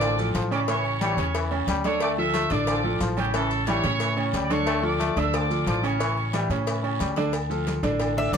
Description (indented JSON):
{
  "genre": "latin, salsa",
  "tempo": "180 BPM",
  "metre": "4/4",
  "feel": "straight",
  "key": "D harmonic minor",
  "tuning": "A4 = 441 Hz",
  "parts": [
    { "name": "bright trumpet section", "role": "melody", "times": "0.0-6.3 s", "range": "G4 to E6", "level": "-29 LUFS", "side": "right 2 dB", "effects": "none" },
    { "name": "trombone with straight mute", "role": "second line", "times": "0.0-7.2 s", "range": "E3 to A3", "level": "-31 LUFS", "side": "left 7 dB", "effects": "none" },
    { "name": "bright grand piano", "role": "accompaniment", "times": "0.0-8.4 s", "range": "C#3 to D5", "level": "-27 LUFS", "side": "right 2 dB", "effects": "none" },
    { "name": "upright bass", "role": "bass", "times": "0.0-8.4 s", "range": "A1 to A2", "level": "-28 LUFS", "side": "equal", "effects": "none" },
    { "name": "agogo bells", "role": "percussion", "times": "0.0-8.4 s", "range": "none", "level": "-34 LUFS", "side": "left 3 dB", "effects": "none" },
    { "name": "congas", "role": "percussion", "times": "0.0-8.4 s", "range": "none", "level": "-35 LUFS", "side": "left 1 dB", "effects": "none" },
    { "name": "cowbell", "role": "percussion", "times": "0.0-8.4 s", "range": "none", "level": "-35 LUFS", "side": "left 4 dB", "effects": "none" },
    { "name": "guiro", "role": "percussion", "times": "0.0-8.4 s", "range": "none", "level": "-42 LUFS", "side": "right 8 dB", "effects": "none" },
    { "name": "maracas", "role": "percussion", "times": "0.0-8.4 s", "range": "none", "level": "-45 LUFS", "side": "left 4 dB", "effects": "none" },
    { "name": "Cuban tres", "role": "melody", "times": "8.2-8.4 s", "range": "D5 to E5", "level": "-25 LUFS", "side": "left 2 dB", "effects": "none" }
  ],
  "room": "moderate studio reverb, RT60 0.6 s",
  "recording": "none",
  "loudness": "-22 LUFS",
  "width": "side -7 dB against mid",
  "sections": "0.0-7.3 A section; 7.3-8.4 B section",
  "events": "Cuban tres solo 7.3-8.4",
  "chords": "0.0 Dm; 0.7 A7; 2.0 Dm; 3.3 A7; 4.7 Dm; 6.0 A7; 7.3 Dm"
}